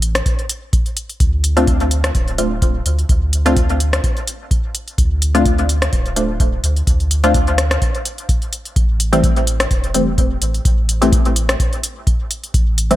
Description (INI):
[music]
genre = dub techno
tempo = 127 BPM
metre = 4/4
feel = swing 54% on 16ths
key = A minor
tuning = A4 = 440 Hz
[part]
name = soft dub sub bass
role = bass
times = 0.0-13.0 s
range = D1 to D2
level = -18 LUFS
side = equal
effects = sidechain pumping
[part]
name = deep house drum kit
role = drums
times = 0.0-13.0 s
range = hi-hat, rim click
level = -21 LUFS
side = left 1 dB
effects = gated reverb
[part]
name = electronic kick drum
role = drums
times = 0.3-12.6 s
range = none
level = -17 LUFS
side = equal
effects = none
[part]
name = filtered dub chord stab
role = stabs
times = 1.6-13.0 s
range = E3 to F4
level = -18 LUFS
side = left 1 dB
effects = chorus, phaser, sidechain pumping, dub echo
[sound]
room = light reverb, digital ambience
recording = bright 1980s-style digital production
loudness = -14 LUFS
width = side -15 dB against mid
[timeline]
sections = 0.0-13.0 A section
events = none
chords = 0.0 N.C.; 8.8 A5